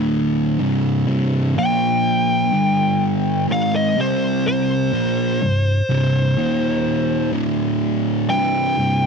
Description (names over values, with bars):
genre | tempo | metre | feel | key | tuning
metal | 62 BPM | 4/4 | straight | C minor | A4 = 445 Hz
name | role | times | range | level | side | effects
fuzz guitar | riff | 0.0-9.1 s | C2 to C4 | -18 LUFS | equal | distortion
fuzz lead guitar | melody | 1.6-9.1 s | C5 to G5 | -21 LUFS | left 2 dB | distortion, slapback echo
room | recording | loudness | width
little or no reverb | dry, close 1970s-style studio recording | -16 LUFS | side -5 dB against mid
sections
0.0-8.8 A section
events
lead electric guitar solo 0.0-8.8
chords
0.0 D5; 0.6 C5; 1.6 Bb5; 2.5 G5; 3.5 Cm; 6.4 Eb5; 7.3 D5; 8.3 C5